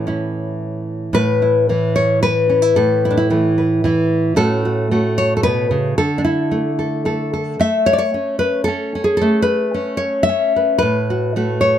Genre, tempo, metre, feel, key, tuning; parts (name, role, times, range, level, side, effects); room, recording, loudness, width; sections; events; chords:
folk, solo fingerstyle acoustic guitar; 112 BPM; 3/4; straight; A major; A4 = 438 Hz
nylon-string guitar; solo; 0.0-11.8 s; A2 to E5; -15 LUFS; equal
light reverb; close, detailed microphones; -15 LUFS; side -10 dB against mid
0.0-1.1 A section; 1.1-11.8 B section
0.0 A; 1.1 Aadd9; 4.4 F#m/A; 6.0 Dsus2; 7.6 Aadd9; 10.8 F#m/A